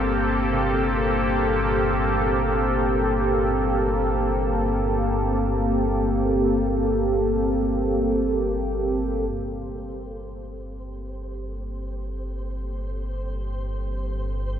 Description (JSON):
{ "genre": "dark ambient drone", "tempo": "free time", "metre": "none", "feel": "none", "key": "unclear", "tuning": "A4 = 438 Hz", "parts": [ { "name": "deep dark ambient pad", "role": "sustained chords", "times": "0.0-14.6 s", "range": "Bb3 to A4", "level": "-23 LUFS", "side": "equal", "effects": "chorus, built-in reverb" }, { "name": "deep rumbling drone", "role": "drone", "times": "0.0-14.6 s", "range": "G1 to G2", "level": "-28 LUFS", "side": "equal", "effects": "built-in reverb" }, { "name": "gamelan-type bronze metallophone", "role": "arpeggios", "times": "0.5-6.2 s", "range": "C3", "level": "-38 LUFS", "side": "right 1 dB", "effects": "none" }, { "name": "flickering grainy texture", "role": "texture", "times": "9.7-14.6 s", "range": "C5", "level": "-42 LUFS", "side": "right 1 dB", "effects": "built-in reverb" } ], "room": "wet cathedral reverb, RT60 5.5 s", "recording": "cassette tape", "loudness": "-21 LUFS", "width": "side -9 dB against mid", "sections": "0.0-9.3 A section; 9.3-14.6 B section", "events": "none", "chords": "0.0 Gmadd9", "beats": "free time" }